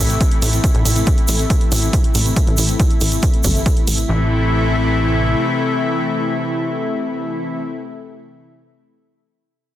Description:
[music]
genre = uplifting trance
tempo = 139 BPM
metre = 4/4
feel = straight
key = A minor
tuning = A4 = 439 Hz
[part]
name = lush unison pad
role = sustained chords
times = 0.0-7.6 s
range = C3 to E4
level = -20 LUFS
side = left 2 dB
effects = chorus, sidechain pumping
[part]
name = plucky analog bass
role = bass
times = 0.0-5.3 s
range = G1 to A1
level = -18 LUFS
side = equal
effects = sidechain pumping
[part]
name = tube shaker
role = percussion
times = 0.0-4.1 s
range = none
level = -26 LUFS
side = right 5 dB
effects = none
[part]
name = downlifter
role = sound effects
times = 0.0-0.6 s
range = none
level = barely audible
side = none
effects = none
[part]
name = electronic hi-hat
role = drums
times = 0.1-4.1 s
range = none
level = -24 LUFS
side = right 2 dB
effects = none
[part]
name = electronic kick drum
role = drums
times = 0.2-3.7 s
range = none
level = -16 LUFS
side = equal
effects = none
[sound]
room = light reverb, digital ambience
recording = dense, heavily limited modern master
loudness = -15 LUFS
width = side -13 dB against mid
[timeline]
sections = 0.0-4.1 A section; 4.1-7.5 B section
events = filter sweep on analog synth bass 0.0-4.1; filter sweep on analog synth pad 0.0-4.1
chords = 0.0 Am

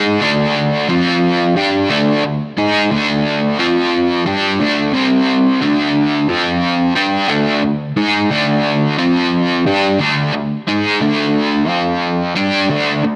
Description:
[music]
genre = rock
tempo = 89 BPM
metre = 4/4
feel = straight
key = D minor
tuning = A4 = 439 Hz
[part]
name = crunchy overdriven guitar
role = solo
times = 0.0-13.2 s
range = C3 to G#4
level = -15 LUFS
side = equal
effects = harmonic tremolo
[sound]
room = light reverb, digital ambience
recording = none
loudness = -15 LUFS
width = mono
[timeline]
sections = 0.0-13.2 A section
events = none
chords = 0.0 D5; 0.9 F5; 1.6 D5; 3.6 F5; 4.3 D5; 4.9 C5; 5.6 D5; 6.3 F5; 7.0 D5; 9.0 F5; 9.7 D5; 11.7 F5; 12.4 D5

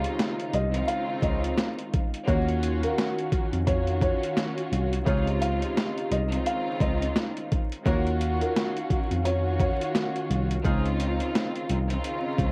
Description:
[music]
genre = hip hop, boom-bap hip-hop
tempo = 86 BPM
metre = 4/4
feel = swing 58% on 16ths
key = Db major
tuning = A4 = 440 Hz
[part]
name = dark upright piano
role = melody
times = 0.0-10.6 s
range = Bb4 to F5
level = -34 LUFS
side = equal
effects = high-pass filter, low-pass filter, cassette tape, tape echo
[part]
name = warm studio string section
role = accompaniment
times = 0.0-12.5 s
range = C3 to Gb4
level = -33 LUFS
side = equal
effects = high-pass filter, low-pass filter, cassette tape
[part]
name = hollow soft pad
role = sustained chords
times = 0.0-12.5 s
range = Eb3 to F5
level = -41 LUFS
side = equal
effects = none
[part]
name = tine electric piano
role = bass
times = 0.0-12.5 s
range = C2 to F2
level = -30 LUFS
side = equal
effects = none
[part]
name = boom bap sampler-style drum kit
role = drums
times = 0.0-12.5 s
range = hi-hat, kick drum, snare drum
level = -30 LUFS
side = equal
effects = overdrive
[part]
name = clear horn section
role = stabs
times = 2.3-10.9 s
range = Bb3 to Bb4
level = -44 LUFS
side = equal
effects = none
[sound]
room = light reverb, small room ambience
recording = home recording on cassette, vinyl crackle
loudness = -27 LUFS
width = mono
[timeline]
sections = 0.0-12.5 A section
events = none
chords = 0.0 Dbmaj9; 2.3 Ebm9; 5.1 Dbmaj9; 7.9 Ebm9; 10.6 Dbmaj9

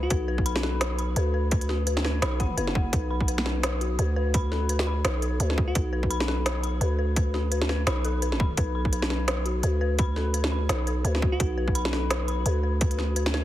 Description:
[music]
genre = half-time drum and bass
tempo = 170 BPM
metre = 4/4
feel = swing 56% on 16ths, half-time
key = unclear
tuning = A4 = 440 Hz
[part]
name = bell-like FM electric piano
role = melody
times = 0.0-0.5, 5.7-6.2, 11.3-11.8 s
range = F#4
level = -37 LUFS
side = equal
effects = chorus, ping-pong delay
[part]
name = dark detuned synth bell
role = arpeggios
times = 0.0-13.4 s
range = F#4 to B5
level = -32 LUFS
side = left 4 dB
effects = chorus, ping-pong delay
[part]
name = growling 808-style bass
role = bass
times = 0.0-13.4 s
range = F#1 to D2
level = -26 LUFS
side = equal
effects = none
[part]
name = electronic kick drum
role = drums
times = 0.1-12.9 s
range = none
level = -25 LUFS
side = equal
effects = overdrive
[part]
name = organic electronic drum kit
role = drums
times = 0.1-13.4 s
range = hi-hat, snare drum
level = -30 LUFS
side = equal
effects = overdrive
[sound]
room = digital ambience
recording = heavily compressed radio sound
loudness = -23 LUFS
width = side -13 dB against mid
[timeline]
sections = 0.0-13.4 A section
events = none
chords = 0.0 Bm

